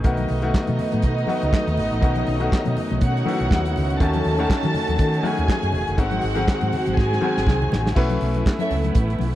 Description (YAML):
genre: disco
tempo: 121 BPM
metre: 4/4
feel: swing 56% on 16ths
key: unclear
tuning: A4 = 443 Hz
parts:
  - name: dark studio violin section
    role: second line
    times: 0.0-8.7 s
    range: C#4 to A5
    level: -26 LUFS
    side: equal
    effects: none
  - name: clear baby grand piano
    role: accompaniment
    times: 0.0-9.4 s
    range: D#3 to B4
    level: -26 LUFS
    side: left 3 dB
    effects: none
  - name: dark studio string section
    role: sustained chords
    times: 0.0-9.4 s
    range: D#3 to F#4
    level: -28 LUFS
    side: right 3 dB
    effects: none
  - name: hollow-body short-scale fingered electric bass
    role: bass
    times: 0.0-9.4 s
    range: E1 to D#3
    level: -24 LUFS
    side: equal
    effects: none
  - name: warm soul drum kit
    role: drums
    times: 0.0-9.3 s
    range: crash cymbal, handclaps, hi-hat, kick drum, snare drum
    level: -20 LUFS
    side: equal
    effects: none
  - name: congas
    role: percussion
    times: 0.2-9.3 s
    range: none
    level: -31 LUFS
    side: left 6 dB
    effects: none
room: little or no reverb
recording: dry, close 1970s-style studio recording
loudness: -18 LUFS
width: side -14 dB against mid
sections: 0.0-8.0 A section; 8.0-9.4 B section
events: drum fill 7.0-8.0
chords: 0.0 B7; 4.0 D#m7b5; 6.0 G#7; 8.0 B9sus4